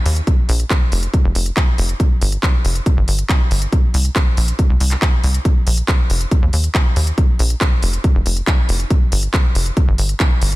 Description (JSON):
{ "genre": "uplifting trance", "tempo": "139 BPM", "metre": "4/4", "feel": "straight", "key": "unclear", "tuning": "A4 = 440 Hz", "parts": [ { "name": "tight sequencer bass", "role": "bass", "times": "0.1-10.6 s", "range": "F1 to Eb2", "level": "-16 LUFS", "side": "equal", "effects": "sidechain pumping" }, { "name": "techno drum kit", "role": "drums", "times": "0.1-10.6 s", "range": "handclaps, hi-hat", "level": "-23 LUFS", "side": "equal", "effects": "studio reverb" }, { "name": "electronic kick drum", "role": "drums", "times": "0.3-10.3 s", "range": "none", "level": "-15 LUFS", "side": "equal", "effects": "studio reverb" } ], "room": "little or no reverb", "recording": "dense, heavily limited modern master", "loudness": "-14 LUFS", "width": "side -19 dB against mid", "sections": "0.0-10.6 A section", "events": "none", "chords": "none", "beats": "| 0.27 0.70 1.14 1.57 | 2.00 2.43 2.86 3.29 | 3.73 4.16 4.59 5.02 | 5.45 5.88 6.32 6.75 | 7.18 7.61 8.04 8.47 | 8.91 9.34 9.77 10.20" }